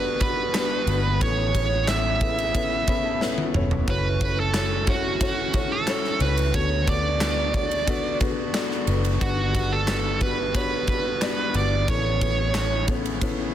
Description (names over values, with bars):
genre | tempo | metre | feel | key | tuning
piano-driven pop | 90 BPM | 4/4 | straight | unclear | A4 = 440 Hz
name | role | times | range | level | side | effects
smooth overdriven lead guitar | melody | 0.0-12.8 s | F#4 to E5 | -26 LUFS | right 4 dB | none
felt-muted upright piano | accompaniment | 0.0-13.5 s | G2 to B5 | -29 LUFS | left 5 dB | none
clear woodwind section | sustained chords | 0.0-13.5 s | C#3 to F#4 | -37 LUFS | right 1 dB | none
vintage muted fingered electric bass | bass | 0.0-13.5 s | E1 to D2 | -26 LUFS | equal | none
huge arena drum kit | drums | 0.2-13.4 s | handclaps, kick drum, ride cymbal, snare drum, toms | -26 LUFS | equal | soft clipping on kick
room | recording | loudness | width
light reverb, small room ambience | dense, heavily limited modern master | -21 LUFS | side -11 dB against mid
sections
0.0-13.5 A section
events
felt piano fill 2.5-3.9; drum fill 3.2-3.9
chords
0.0 Gmaj7; 1.2 Aadd9; 3.9 F#m7; 6.5 Bm7/D; 9.2 Gmaj7; 11.9 Aadd9